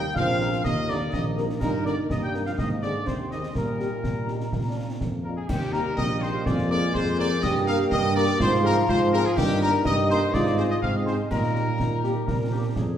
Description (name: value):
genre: military-style march for wind band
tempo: 124 BPM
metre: 2/4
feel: straight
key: Eb major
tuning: A4 = 438 Hz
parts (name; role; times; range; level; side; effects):
- clear trumpet section; melody; 0.0-12.7 s; G4 to G5; -31 LUFS; left 1 dB; none
- mellow woodwind section; second line; 0.0-13.0 s; Eb4 to Ab5; -34 LUFS; left 1 dB; none
- warm euphonium; second line; 0.0-13.0 s; Bb2 to Ab4; -30 LUFS; right 1 dB; none
- dark trombone section; sustained chords; 0.0-13.0 s; F3 to Eb4; -32 LUFS; right 1 dB; none
- mellow tuba; bass; 0.0-13.0 s; Bb1 to Bb2; -27 LUFS; right 2 dB; none
- mellow hollow wooden piccolo; second line; 0.2-12.7 s; G5 to G6; -32 LUFS; left 3 dB; none
- concert snare drum, concert bass drum and clash cymbals; drums; 0.2-12.9 s; none; -31 LUFS; equal; none
- dark French horn section; accompaniment; 0.4-12.6 s; G3 to Bb4; -34 LUFS; left 3 dB; none
room: wet recital hall reverb, RT60 1.5 s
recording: heard from further back in the room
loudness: -22 LUFS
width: side -9 dB against mid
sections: 0.0-5.5 A section; 5.5-13.0 B section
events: none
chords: 0.0 Eb; 1.6 Eb/G; 2.6 Ab; 3.6 Eb/Bb; 4.5 Bb; 5.5 Eb; 6.5 Bb5/F; 7.4 Ebmaj7/G; 8.4 Fm/Ab; 9.4 Eb/G; 10.3 Fm7/Ab; 11.3 Eb/Bb; 12.3 Bb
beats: 0.16 | 0.64 1.13 | 1.61 2.10 | 2.58 3.07 | 3.56 4.04 | 4.53 5.01 | 5.50 5.98 | 6.46 6.95 | 7.43 7.92 | 8.40 8.89 | 9.37 9.86 | 10.34 10.82 | 11.31 11.79 | 12.28 12.76